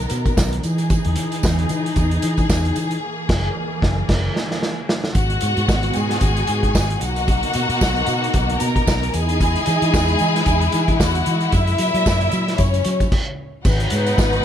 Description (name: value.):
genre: disco.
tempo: 113 BPM.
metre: 4/4.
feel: swing 56% on 16ths.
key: G# minor.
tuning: A4 = 440 Hz.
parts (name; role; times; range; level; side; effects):
warm symphonic string section; sustained chords; 0.0-14.4 s; A#2 to A#4; -25 LUFS; equal; none.
fingered electric bass; bass; 0.0-14.4 s; F#1 to F#3; -21 LUFS; equal; none.
tambourine; percussion; 0.0-14.3 s; none; -36 LUFS; right 8 dB; none.
vintage drum kit; drums; 0.1-14.4 s; crash cymbal, hi-hat, kick drum, snare drum; -21 LUFS; equal; none.
clear studio string section; second line; 5.2-14.4 s; C#4 to A#5; -22 LUFS; left 2 dB; none.
room: light reverb.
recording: none.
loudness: -16 LUFS.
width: side -10 dB against mid.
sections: 0.0-5.2 A section; 5.2-13.6 B section.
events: band accent 3.0-5.2; drum fill 4.1-5.2; stop 13.1-13.6.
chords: 0.0 Bmaj7; 0.6 Emaj7; 3.0 F#9; 5.2 G#m7; 7.0 Bmaj7; 9.1 Emaj7; 11.5 F#9; 13.6 G#m7.